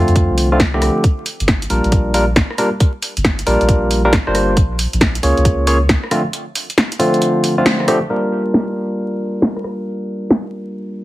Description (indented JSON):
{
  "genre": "UK garage, two-step garage",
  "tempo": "136 BPM",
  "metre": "4/4",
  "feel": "swing 65% on 16ths",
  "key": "G minor",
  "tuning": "A4 = 441 Hz",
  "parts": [
    { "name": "barky tine electric piano", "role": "stabs", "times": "0.0-11.0 s", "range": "D3 to Db5", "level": "-17 LUFS", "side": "equal", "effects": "low-pass filter, tape echo" },
    { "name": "soft dub sub bass", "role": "bass", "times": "0.0-6.0 s", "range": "G1 to F2", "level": "-18 LUFS", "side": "equal", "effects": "none" },
    { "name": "punchy analog drum machine", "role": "drums", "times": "0.1-10.4 s", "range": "hi-hat, rim click, snare drum", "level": "-17 LUFS", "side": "equal", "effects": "low-pass filter on hats, low-pass filter on snare, low-pass filter on room" },
    { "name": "electronic kick drum", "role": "drums", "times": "0.2-6.0 s", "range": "none", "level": "-15 LUFS", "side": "equal", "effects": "none" }
  ],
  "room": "moderate studio reverb, RT60 0.6 s",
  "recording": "heavily compressed radio sound, multiband compression, vinyl crackle",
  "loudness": "-14 LUFS",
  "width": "side -16 dB against mid",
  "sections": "0.0-8.1 A section; 8.1-11.0 B section",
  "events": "band accent 7.7; filter sweep on tine electric piano 8.1-11.0",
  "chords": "0.0 Dm7; 1.0 Gm7; 4.6 Bbm7; 6.1 Dm7; 8.1 Gm7"
}